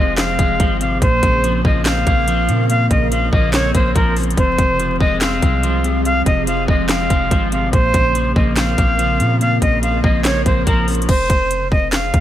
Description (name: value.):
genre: hip hop, trap.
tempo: 143 BPM.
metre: 4/4.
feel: half-time.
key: F minor.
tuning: A4 = 437 Hz.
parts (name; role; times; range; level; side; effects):
bright reedy jazz flute; melody; 0.0-12.2 s; Bb4 to F5; -19 LUFS; equal; tape echo.
electric guitar at the edge of break-up; accompaniment; 0.0-11.1 s; F2 to C4; -22 LUFS; left 2 dB; analog chorus.
ethereal airy pad; sustained chords; 0.0-12.2 s; Db3 to Bb4; -26 LUFS; right 2 dB; ensemble chorus, built-in reverb.
long sustained 808-style bass; bass; 0.0-12.2 s; F1 to Bb2; -20 LUFS; equal; none.
trap drum kit; drums; 0.2-12.2 s; crash cymbal, handclaps, hi-hat, kick drum, snare drum; -18 LUFS; equal; none.
room: little or no reverb.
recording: vinyl crackle.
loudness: -14 LUFS.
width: side -12 dB against mid.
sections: 0.0-11.1 A section; 11.1-12.2 A section.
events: none.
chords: 0.0 Fm; 1.0 Bbmadd9; 4.4 Fm; 7.7 Bbmadd9; 11.1 Fm.